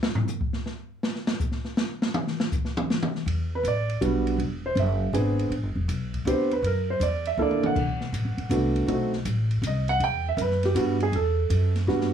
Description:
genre	jazz piano trio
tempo	160 BPM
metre	3/4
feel	swing 66% on 8ths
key	E minor from 3.3 s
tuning	A4 = 440 Hz
part	open jazz drum kit	drums	0.0-12.1 s	crash cymbal, hi-hat, kick drum, ride cymbal, snare drum, toms	-30 LUFS	left 1 dB	none
part	upright bass	bass	3.3-12.1 s	D1 to G2	-26 LUFS	equal	none
part	warm grand piano	melody	3.6-12.1 s	G3 to G5	-25 LUFS	right 2 dB	none
room	little or no reverb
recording	small room ambience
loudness	-23 LUFS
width	side -8 dB against mid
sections	0.0-3.3 A section; 3.3-12.1 B section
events	drum solo 0.0-3.3; drum fill 7.4-7.8, 11.9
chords	0.0 N.C.; 3.3 Em9; 4.4 E7b13; 5.5 Am11; 6.6 F#7alt; 7.8 Bm7; 8.9 B7b9; 10.0 Em9

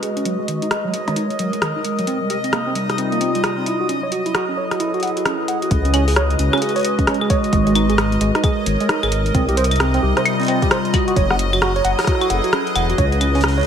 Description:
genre	IDM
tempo	132 BPM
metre	4/4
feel	swing 62% on 16ths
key	C# minor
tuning	A4 = 440 Hz
part	warbly tape-like pad	sustained chords	0.0-13.7 s	C3 to Eb5	-23 LUFS	equal	chorus, built-in reverb, sidechain pumping
part	mellow tine electric piano	arpeggios	0.0-13.6 s	D#3 to F#5	-22 LUFS	right 2 dB	medium stereo tremolo, low-pass filter, tape echo
part	booming analog drum machine	drums	0.0-13.7 s	claves, hi-hat, rim click	-22 LUFS	left 1 dB	none
part	bubbling stepped-filter texture	texture	0.0-13.7 s	D#5	-26 LUFS	left 1 dB	chorus, built-in reverb
part	dark detuned saw bass	bass	5.7-13.6 s	E1 to C#2	-19 LUFS	left 1 dB	tube saturation
part	electronic kick drum	drums	5.7-13.1 s	none	-19 LUFS	left 1 dB	none
room	moderate echo chamber reverb, RT60 1.8 s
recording	none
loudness	-16 LUFS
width	side -8 dB against mid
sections	0.0-5.7 A section; 5.7-13.7 B section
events	filter sweep on tine electric piano 0.0-5.7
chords	0.3 G#m11; 2.1 Cm7; 3.7 F#m11; 5.7 C#m11; 7.5 G#m11; 9.3 Cm7; 10.9 F#m11; 13.0 C#m9

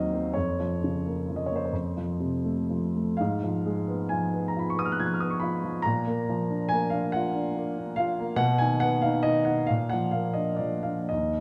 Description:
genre	classical, romantic nocturne for solo piano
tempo	38-49 BPM (dotted quarters)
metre	6/8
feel	rubato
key	unclear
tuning	A4 = 440 Hz
part	warm baby grand piano	solo	0.0-11.4 s	Eb2 to Ab6	-27 LUFS	equal	none
room	wet recital hall reverb, RT60 1.4 s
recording	dark, warm production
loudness	-27 LUFS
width	mono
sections	0.0-11.4 A section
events	none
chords	0.3 Bbm/F; 1.7 F; 3.2 Fdim/Ab; 5.8 Bb; 8.4 B; 9.7 Bb

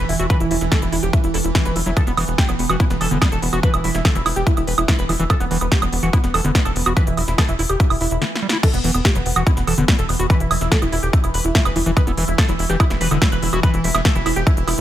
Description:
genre	psychedelic trance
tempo	144 BPM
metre	4/4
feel	straight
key	E minor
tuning	A4 = 440 Hz
part	wide unison lead	melody	0.0-14.8 s	B3 to B4	-24 LUFS	right 1 dB	phaser, sidechain pumping, digital delay
part	evolving wavetable pad	sustained chords	0.0-14.8 s	E3	-28 LUFS	right 4 dB	chorus, built-in reverb, sidechain pumping
part	tight sequencer bass	bass	0.0-14.8 s	E1	-22 LUFS	equal	none
part	big-room dance drum kit	drums	0.1-14.8 s	crash cymbal, hi-hat, snare drum, woodblock	-23 LUFS	right 2 dB	none
part	overdriven acid bass	riff	0.2-14.7 s	D3 to F#4	-25 LUFS	moving between left 4 dB and right 6 dB	auto-pan, cassette tape, sidechain pumping, digital delay
part	electronic kick drum	drums	0.3-14.6 s	none	-17 LUFS	equal	none
room	digital ambience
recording	none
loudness	-15 LUFS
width	side -12 dB against mid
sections	0.0-8.6 A section; 8.6-14.8 B section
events	break 8.2-8.6; drum fill 8.2-8.6; drop 8.6-14.8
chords	0.0 E5

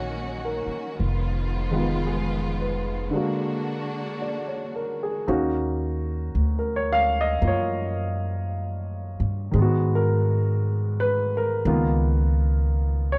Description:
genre	jazz ballad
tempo	56 BPM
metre	4/4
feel	swing 69% on 8ths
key	Eb minor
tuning	A4 = 440 Hz
part	warm baby grand piano	accompaniment	0.0-13.2 s	D3 to F5	-28 LUFS	equal	none
part	warm symphonic string section	sustained chords	0.0-5.3 s	D3 to Gb4	-35 LUFS	equal	none
part	upright bass	bass	0.0-13.2 s	F1 to Ab2	-27 LUFS	equal	none
room	little or no reverb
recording	dry, close 1970s-style studio recording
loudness	-25 LUFS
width	mono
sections	0.0-5.3 A section; 5.3-13.2 B section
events	break 3.1-5.3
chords	0.0 Ebm7; 1.0 Fm7b5; 3.1 Bbaug7; 5.3 Ebm7; 9.5 Abm7; 11.7 Db13

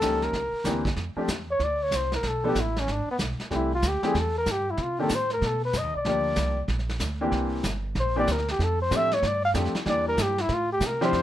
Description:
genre	jazz, small-group swing and bop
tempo	189 BPM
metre	4/4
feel	swing 64% on 8ths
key	F major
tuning	A4 = 440 Hz
part	trumpet with bucket mute	melody	0.0-11.2 s	B3 to F5	-26 LUFS	left 1 dB	none
part	clear grand piano	accompaniment	0.0-11.2 s	Eb3 to A4	-28 LUFS	left 1 dB	none
part	upright bass	bass	0.0-11.2 s	G1 to C3	-30 LUFS	right 1 dB	none
part	vintage brush drum kit	drums	0.0-11.2 s	brushed snare drum, hi-hat, kick drum, snare drum	-32 LUFS	equal	none
room	light reverb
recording	none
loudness	-24 LUFS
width	side -12 dB against mid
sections	1.0-11.1 A section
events	muted trumpet solo 1.0-11.2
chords	0.3 C9; 1.0 F5; 2.2 Bm7b5; 2.9 G#dim; 3.5 Am7; 4.8 Cm9; 5.4 B; 6.0 Bb6; 7.3 C9; 8.6 F69; 9.9 Em7b5; 10.5 Am7

